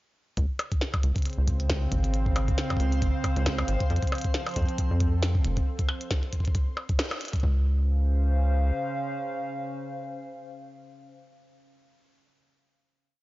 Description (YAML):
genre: IDM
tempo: 136 BPM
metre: 4/4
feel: swing 56% on 16ths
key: Db major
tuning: A4 = 440 Hz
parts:
  - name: warbly tape-like pad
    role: sustained chords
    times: 1.1-11.2 s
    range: Db3 to F5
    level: -33 LUFS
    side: equal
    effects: chorus, built-in reverb
  - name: rubbery square bass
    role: bass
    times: 0.4-8.7 s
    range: F1 to F2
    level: -24 LUFS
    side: equal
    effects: none
  - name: electronic kick drum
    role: drums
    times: 0.4-7.5 s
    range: none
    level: -27 LUFS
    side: equal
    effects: none
  - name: glitchy drum kit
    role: drums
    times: 0.4-7.4 s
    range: hi-hat, percussion blips, snare drum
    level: -32 LUFS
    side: equal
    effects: none
  - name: backwards swelling texture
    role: texture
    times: 1.3-5.7 s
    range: C4 to C5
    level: -43 LUFS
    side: left 1 dB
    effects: built-in reverb
room: digital ambience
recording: dry, gritty hardware recording, nothing above 7.5 kHz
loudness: -24 LUFS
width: side -18 dB against mid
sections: 0.4-7.4 groove; 7.4-11.0 final chord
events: band accent 7.0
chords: 0.4 Dbmaj7; 3.9 F; 7.4 Dbmaj7